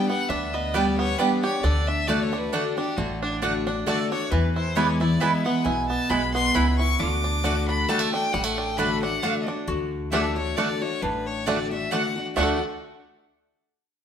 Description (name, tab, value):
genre	bluegrass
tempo	134 BPM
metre	3/4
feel	swing 55% on 8ths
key	D major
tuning	A4 = 440 Hz
part	clear fiddle	melody	0.0-12.6 s	D4 to D6	-28 LUFS	left 2 dB	none
part	lap resonator guitar	second line	0.0-12.6 s	D4 to B4	-35 LUFS	left 3 dB	none
part	picked steel-string acoustic guitar	accompaniment	0.0-12.6 s	E2 to G4	-27 LUFS	left 1 dB	none
part	bluegrass banjo	arpeggios	0.0-12.6 s	D3 to A4	-29 LUFS	right 2 dB	none
part	upright bass	bass	0.3-12.6 s	A1 to E2	-28 LUFS	equal	none
part	mandolin	stabs	0.7-12.6 s	A3 to G#5	-28 LUFS	right 5 dB	none
room	moderate stone room reverb, RT60 1.2 s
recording	band playing live in one room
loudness	-22 LUFS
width	side -8 dB against mid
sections	0.0-9.7 A section; 9.7-12.4 B section; 12.4-13.7 C section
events	none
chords	0.0 G; 1.6 D; 4.3 E; 7.0 D